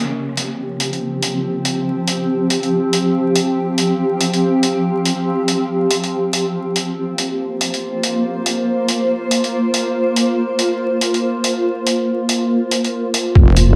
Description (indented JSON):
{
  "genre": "deep dubstep",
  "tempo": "141 BPM",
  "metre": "4/4",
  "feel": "swing 61% on 16ths, half-time",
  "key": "unclear",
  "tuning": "A4 = 440 Hz",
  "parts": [
    { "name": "granular cloud pad", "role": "sustained chords", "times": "0.0-13.8 s", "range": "F3 to C5", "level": "-20 LUFS", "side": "equal", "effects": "built-in reverb" },
    { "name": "electronic hi-hat", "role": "drums", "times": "0.4-13.7 s", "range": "none", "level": "-23 LUFS", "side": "equal", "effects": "tape echo" },
    { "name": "wobble bass", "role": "bass", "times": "13.4-13.8 s", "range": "F1", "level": "-13 LUFS", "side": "equal", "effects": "chorus" },
    { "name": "electronic kick drum", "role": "drums", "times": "13.4-13.5 s", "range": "none", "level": "-10 LUFS", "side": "equal", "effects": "none" }
  ],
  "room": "wet spring reverb, RT60 1.5 s",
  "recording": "echo-heavy mix, vinyl crackle",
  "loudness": "-18 LUFS",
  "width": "mono",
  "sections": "0.0-13.4 A section",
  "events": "none",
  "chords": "0.0 F5; 6.5 Bbsus2"
}